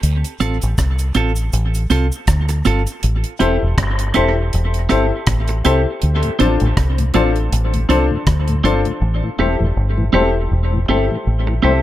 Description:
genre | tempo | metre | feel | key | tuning
dub reggae | 80 BPM | 4/4 | swing 57% on 16ths | D minor | A4 = 443 Hz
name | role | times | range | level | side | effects
deep dub fingered electric bass | bass | 0.0-11.8 s | E1 to D2 | -17 LUFS | equal | none
deep reggae drum kit | drums | 0.0-9.0 s | hi-hat, kick drum, rim click | -22 LUFS | equal | dub echo
cabasa | percussion | 0.0-3.0 s | none | -34 LUFS | right 5 dB | dub echo
clean electric guitar | accompaniment | 0.4-11.8 s | C4 to A4 | -21 LUFS | right 5 dB | dub echo
warm upright piano | stabs | 3.4-11.8 s | D4 to C5 | -20 LUFS | left 6 dB | dub echo
mellow tonewheel organ | accompaniment | 6.2-11.7 s | D2 to D4 | -24 LUFS | left 2 dB | overdrive, chorus vibrato, slow rotary speaker, dub echo
room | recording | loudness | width
light reverb, studio ambience | none | -14 LUFS | side -13 dB against mid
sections
0.0-11.8 A section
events
break 0.0-6.0; part muted 3.0-11.8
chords
0.0 Dm7; 3.0 Am7; 6.0 Dm7; 9.0 Am7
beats
| 0.03 0.78 1.53 2.28 | 3.02 3.77 4.52 5.27 | 6.02 6.77 7.52 8.27 | 9.01 9.76 10.51 11.26

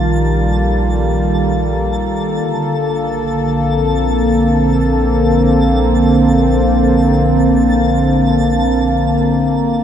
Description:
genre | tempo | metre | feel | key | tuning
ambient | free time | none | none | Bb major | A4 = 440 Hz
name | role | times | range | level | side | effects
warm analog pad | sustained chords | 0.0-9.8 s | D3 to A4 | -14 LUFS | equal | chorus
round analog bass | bass | 0.0-9.8 s | Bb1 | -18 LUFS | equal | none
overtone-sweeping drone | drone | 0.0-9.8 s | Bb3 | -20 LUFS | equal | chorus, built-in reverb
twinkling granular texture | texture | 0.0-9.8 s | A5 | -28 LUFS | equal | built-in reverb
room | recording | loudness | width
wet cathedral reverb, RT60 5.0 s | in a vast, echoing space, cassette tape | -12 LUFS | side -9 dB against mid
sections
0.0-9.8 A section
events
fade-out on synth texture 0.0-9.8; filter sweep on analog synth pad 0.0-9.8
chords
0.0 F9/Bb; 2.4 Bbmaj9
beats
free time

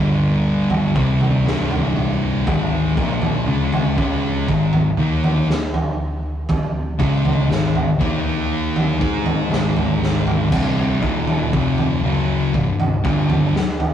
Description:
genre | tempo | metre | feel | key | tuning
stoner and doom metal | 60 BPM | 4/4 | straight | unclear | A4 = 441 Hz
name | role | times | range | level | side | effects
thick fuzz guitar | riff | 0.0-13.5 s | C2 to Ab4 | -19 LUFS | left 3 dB | distortion
thick fuzz guitar | riff | 0.0-13.5 s | C2 to Ab4 | -24 LUFS | right 8 dB | distortion
growling picked electric bass | bass | 0.0-13.5 s | C1 to Ab2 | -29 LUFS | right 1 dB | none
raw garage drum kit | drums | 0.7-13.9 s | crash cymbal, kick drum, snare drum, toms | -21 LUFS | right 1 dB | none
room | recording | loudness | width
light reverb | rough rehearsal-room recording, warm saturation | -16 LUFS | side -9 dB against mid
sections
0.0-13.9 A section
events
drum fill 10.0-10.5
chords
0.0 G5; 1.0 C5; 2.5 Ab5; 8.0 Eb5; 9.0 Ab5; 10.5 Cm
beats
0.45 1.46 | 2.47 3.47 4.48 5.49 | 6.49 7.50 8.51 9.52 | 10.52 11.53 12.54 13.55

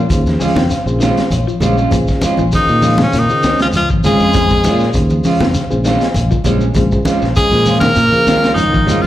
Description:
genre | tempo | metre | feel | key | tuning
afrobeat | 99 BPM | 4/4 | straight | Bb dorian | A4 = 435 Hz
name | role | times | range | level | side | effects
clean electric guitar | arpeggios | 0.0-9.1 s | Db3 to Ab3 | -22 LUFS | left 4 dB | phaser, slapback echo
fingered electric bass | bass | 0.0-9.1 s | Ab1 to Bb2 | -17 LUFS | equal | none
mellow reed electric piano | accompaniment | 0.1-9.1 s | Db4 to Ab5 | -23 LUFS | left 2 dB | fast tremolo, slapback echo
crunchy breakbeat drum kit | drums | 0.1-9.0 s | hi-hat, kick drum, snare drum | -19 LUFS | equal | none
shekere | percussion | 0.1-9.1 s | none | -25 LUFS | left 1 dB | none
congas | percussion | 0.3-9.0 s | none | -20 LUFS | equal | none
electric guitar at the edge of break-up | stabs | 0.4-9.1 s | Ab3 to F4 | -19 LUFS | right 3 dB | spring reverb, slapback echo
edgy tenor saxophone | melody | 2.5-9.1 s | Db4 to Bb4 | -14 LUFS | left 1 dB | slapback echo
breathy trombone | second line | 2.5-9.1 s | Db3 to Bb3 | -22 LUFS | right 3 dB | none
room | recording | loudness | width
light reverb, small room ambience | live gig heard through the venue's PA, club reverb | -11 LUFS | side -13 dB against mid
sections
0.0-9.1 A section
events
reed electric piano fill 0.1-1.9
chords
0.0 Bbm7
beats
0.10 0.71 1.31 | 1.92 2.52 3.13 3.73 | 4.34 4.94 5.55 6.15 | 6.76 7.36 7.97 8.57

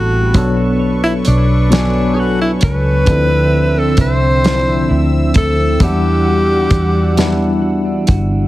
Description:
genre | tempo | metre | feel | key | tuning
slow six-eight R&B | 44 BPM (dotted quarters) | 6/8 | straight | unclear | A4 = 440 Hz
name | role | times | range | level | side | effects
breathy tenor saxophone | melody | 0.0-7.6 s | D4 to C5 | -18 LUFS | equal | none
clean electric guitar | second line | 0.0-8.5 s | D3 to C#5 | -22 LUFS | right 5 dB | tremolo
tine electric piano | accompaniment | 0.0-8.5 s | F3 to G#5 | -18 LUFS | left 3 dB | medium stereo tremolo
warm analog pad | sustained chords | 0.0-8.5 s | G3 to E6 | -25 LUFS | right 1 dB | chorus
vintage muted fingered electric bass | bass | 0.0-8.5 s | G1 to E2 | -16 LUFS | equal | none
warm soul drum kit | drums | 0.3-8.3 s | hi-hat, kick drum, snare drum | -14 LUFS | equal | none
room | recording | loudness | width
little or no reverb | heavily compressed radio sound | -11 LUFS | side -16 dB against mid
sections
0.0-8.5 A section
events
none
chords
0.4 Bm9; 3.1 Dm9; 5.8 Em9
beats
| 0.35 1.71 | 3.08 4.44 | 5.80 7.17

